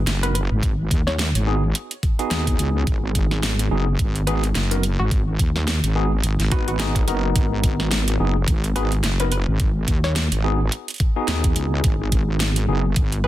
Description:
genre	glitch hop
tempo	107 BPM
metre	4/4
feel	swing 58% on 16ths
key	G# minor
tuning	A4 = 441 Hz
part	wobble bass	bass	0.0-13.3 s	F#1 to D#2	-21 LUFS	equal	chorus, tube saturation
part	dubstep drum kit	drums	0.1-13.2 s	hi-hat, snare drum	-26 LUFS	right 1 dB	studio reverb
part	woody wave-folded pluck	melody	0.2-13.3 s	F#4 to C#5	-30 LUFS	left 1 dB	chorus, dub echo
part	tine electric piano	stabs	0.2-13.3 s	B3 to B4	-26 LUFS	equal	overdrive, medium stereo tremolo, sidechain pumping, dub echo
part	electronic kick drum	drums	0.6-13.1 s	none	-21 LUFS	equal	studio reverb
room	little or no reverb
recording	dense, heavily limited modern master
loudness	-18 LUFS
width	side -14 dB against mid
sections	0.0-13.3 A section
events	none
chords	0.0 G#m7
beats	0.07 | 0.63 1.19 1.75 2.31 | 2.87 3.43 3.99 4.55 | 5.11 5.67 6.24 6.80 | 7.36 7.92 8.48 9.04 | 9.60 10.16 10.72 11.28 | 11.84 12.40 12.96

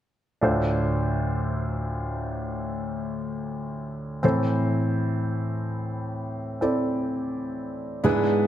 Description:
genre	pop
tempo	63 BPM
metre	4/4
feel	straight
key	D minor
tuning	A4 = 440 Hz
part	clear grand piano	accompaniment	0.4-8.5 s	D2 to D5	-24 LUFS	equal	none
part	fingerpicked steel-string acoustic guitar	arpeggios	8.0-8.5 s	G#3 to E4	-27 LUFS	left 9 dB	none
room	wet recital hall reverb, RT60 1.7 s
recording	none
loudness	-24 LUFS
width	side -11 dB against mid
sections	0.4-8.5 A section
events	none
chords	0.4 Dm7; 4.2 Am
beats	| 0.42 1.38 2.33 3.28 | 4.23 5.19 6.14 7.09 | 8.04

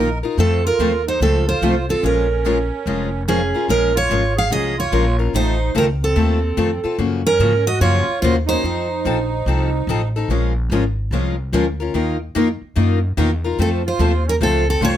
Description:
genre	acoustic string swing (jazz manouche)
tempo	145 BPM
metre	4/4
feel	swing 64% on 8ths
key	Bb minor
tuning	A4 = 440 Hz
part	picked steel-string acoustic guitar	melody	0.0-10.1, 13.6-15.0 s	Ab4 to F5	-20 LUFS	right 2 dB	plate reverb
part	accordion	second line	0.0-10.1, 13.6-15.0 s	C4 to Bb4	-26 LUFS	right 5 dB	light tremolo tuning
part	picked steel-string acoustic guitar	accompaniment	0.0-14.9 s	Db3 to Bb4	-21 LUFS	left 6 dB	none
part	picked steel-string acoustic guitar	accompaniment	0.0-3.4, 10.3-14.9 s	Eb3 to Bb4	-25 LUFS	right 6 dB	none
part	upright bass	bass	0.0-15.0 s	F1 to Ab2	-20 LUFS	equal	none
room	light reverb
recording	close, detailed microphones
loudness	-16 LUFS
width	side -11 dB against mid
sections	0.0-3.7 A section; 3.7-15.0 A section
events	none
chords	0.4 F; 2.0 Bbm7; 5.3 F7/A; 7.0 Gbmaj7; 8.6 F7; 10.3 Bbm7; 11.9 Ebsus2; 13.6 F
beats	| 0.38 0.79 1.20 1.62 | 2.03 2.44 2.86 3.27 | 3.69 4.10 4.51 4.92 | 5.34 5.75 6.16 6.58 | 6.99 7.40 7.82 8.23 | 8.64 9.05 9.47 9.88 | 10.29 10.70 11.12 11.53 | 11.94 12.35 12.76 13.18 | 13.59 14.00 14.41 14.82

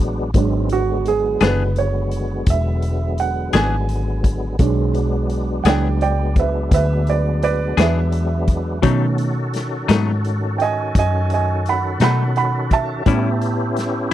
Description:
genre	slow blues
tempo	57 BPM (dotted quarters)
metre	12/8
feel	straight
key	E mixolydian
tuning	A4 = 443 Hz
part	tonewheel organ	sustained chords	0.0-14.1 s	D3 to A4	-26 LUFS	left 1 dB	chorus vibrato, fast rotary speaker
part	vintage muted fingered electric bass	bass	0.0-14.1 s	E1 to B2	-20 LUFS	left 1 dB	none
part	warm baby grand piano	accompaniment	0.3-14.1 s	D#3 to B5	-22 LUFS	right 7 dB	none
part	raw garage drum kit	drums	0.3-14.1 s	hi-hat, kick drum, snare drum	-20 LUFS	left 1 dB	none
part	clean electric guitar	accompaniment	1.4-14.1 s	A2 to G#4	-20 LUFS	left 9 dB	tremolo
room	little or no reverb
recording	dry, close 1970s-style studio recording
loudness	-16 LUFS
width	side -12 dB against mid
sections	0.0-14.1 A section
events	grand piano solo 0.0-14.1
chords	0.0 E7; 8.8 B7; 13.1 A7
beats	| 0.35 1.41 2.47 3.54 | 4.60 5.66 6.72 7.78 | 8.84 9.90 10.96 12.01 | 13.07 14.13

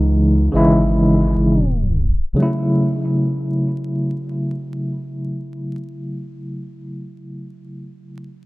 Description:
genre	trip hop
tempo	free time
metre	none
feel	none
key	F# dorian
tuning	A4 = 441 Hz
part	tine electric piano	accompaniment	0.0-8.5 s	C#3 to E4	-18 LUFS	equal	tremolo, tape echo
part	round analog bass	bass	0.0-2.3 s	G#1 to C#2	-18 LUFS	equal	none
room	light reverb, digital ambience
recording	worn, warbling old tape, cassette tape, vinyl crackle, warbly pitch drift, tape stop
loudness	-16 LUFS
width	side -21 dB against mid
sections	0.0-2.4 A section; 2.4-8.5 B section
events	tape stop 1.5-2.4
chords	0.0 C#madd9; 2.4 F#m7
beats	free time

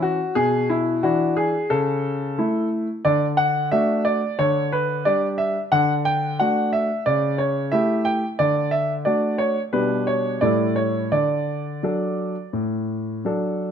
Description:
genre	classical-period piano sonatina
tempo	89 BPM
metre	4/4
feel	rubato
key	D major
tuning	A4 = 440 Hz
part	clear concert grand piano	solo	0.0-13.7 s	A2 to G5	-19 LUFS	equal	none
room	moderate recital hall reverb, RT60 1.4 s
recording	close, detailed microphones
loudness	-19 LUFS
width	side -8 dB against mid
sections	0.0-13.7 A section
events	none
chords	0.4 E5/B; 1.7 A/C#; 3.0 D; 4.4 G5/D; 5.7 D; 7.1 A7/C#; 8.4 D; 9.7 G/B; 10.4 A7; 11.1 D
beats	| 0.36 1.04 1.71 2.38 | 3.05 3.72 4.38 5.06 | 5.73 6.39 7.05 7.72 | 8.39 9.06 9.73 10.42 | 11.12 11.84 12.54 13.25

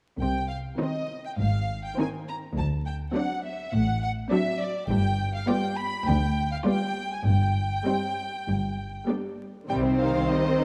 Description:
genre	quick classical-period movement for string orchestra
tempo	101 BPM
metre	4/4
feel	straight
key	C minor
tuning	A4 = 440 Hz
part	rich chamber violin section	melody	0.2-10.6 s	D5 to B5	-34 LUFS	equal	none
part	rich chamber cello section	bass	0.2-10.2 s	D2 to C3	-31 LUFS	equal	none
part	rich chamber double bass section	bass	0.2-10.2 s	G1 to D2	-31 LUFS	equal	none
part	rich chamber violin section	second line	0.8-10.6 s	G3 to D5	-34 LUFS	equal	none
part	rich symphonic viola section	accompaniment	0.8-10.6 s	Eb3 to C4	-30 LUFS	equal	none
room	moderate scoring stage reverb, RT60 1.8 s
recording	dark, warm production, vinyl crackle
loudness	-27 LUFS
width	mono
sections	0.2-10.6 A section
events	none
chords	0.2 Cm; 1.4 Ab; 2.6 D7; 4.9 G7; 7.3 Cm/G; 8.5 G; 9.7 Cm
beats	| 0.20 0.79 1.38 1.98 | 2.57 3.15 3.73 4.31 | 4.90 5.48 6.07 6.66 | 7.27 7.88 8.48 9.09 | 9.69 10.29

